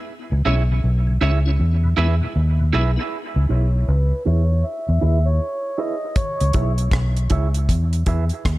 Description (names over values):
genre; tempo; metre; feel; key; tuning
dub reggae; 79 BPM; 4/4; swing 64% on 16ths; C# minor; A4 = 440 Hz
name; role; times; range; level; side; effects
tonewheel organ; accompaniment; 0.3-3.0 s; E2 to E4; -29 LUFS; left 2 dB; overdrive, chorus vibrato, slow rotary speaker, dub echo
vintage muted fingered electric bass; bass; 0.3-8.6 s; B1 to E2; -17 LUFS; equal; none
electric guitar at the edge of break-up; accompaniment; 0.5-8.2 s; E4 to E5; -27 LUFS; right 6 dB; harmonic tremolo, low-pass filter, dub echo
melodica; melody; 3.5-6.6 s; B4 to E5; -27 LUFS; equal; low-pass filter, dub echo
deep reggae drum kit; drums; 6.2-8.6 s; hi-hat, kick drum, rim click; -22 LUFS; equal; none
room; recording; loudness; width
small room ambience; echo-heavy mix; -17 LUFS; side -18 dB against mid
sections
0.0-3.1 A section; 3.1-8.6 B section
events
break 0.0-3.1; part muted 3.1-6.2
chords
0.1 C#m; 1.6 E; 3.1 C#m; 4.6 E; 6.2 C#m; 7.7 E